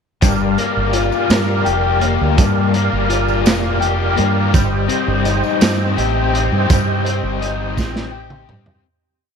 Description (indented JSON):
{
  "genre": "psychedelic rock",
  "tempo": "56 BPM (dotted quarters)",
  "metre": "6/8",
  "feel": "straight",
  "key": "G minor",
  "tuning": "A4 = 440 Hz",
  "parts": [
    { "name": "tonewheel organ", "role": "sustained chords", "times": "0.2-8.8 s", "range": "G4 to G5", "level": "-22 LUFS", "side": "right 9 dB", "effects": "overdrive, chorus vibrato, slow rotary speaker" },
    { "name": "overdriven electric guitar", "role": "riff", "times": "0.2-8.9 s", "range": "G2 to G4", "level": "-19 LUFS", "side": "left 14 dB", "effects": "tremolo" },
    { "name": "deep dub fingered electric bass", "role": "bass", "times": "0.2-8.8 s", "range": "F1 to G2", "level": "-19 LUFS", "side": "right 2 dB", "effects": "none" },
    { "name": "crunchy breakbeat drum kit", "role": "drums", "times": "0.2-8.8 s", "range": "hi-hat, kick drum, snare drum, toms", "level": "-18 LUFS", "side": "right 2 dB", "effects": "none" },
    { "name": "tambourine", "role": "percussion", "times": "0.2-8.1 s", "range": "none", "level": "-33 LUFS", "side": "right 17 dB", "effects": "none" }
  ],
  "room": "light reverb",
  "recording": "1960s-style stereo with parts hard left and right",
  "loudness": "-14 LUFS",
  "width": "side -6 dB against mid",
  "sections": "0.2-8.9 groove",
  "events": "fade-out 6.7-8.9; drum fill 7.8-8.9",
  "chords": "0.2 Gm7; 4.5 Cm/G",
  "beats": "| 0.23 1.30 | 2.38 3.46 | 4.54 5.62 | 6.70 7.78"
}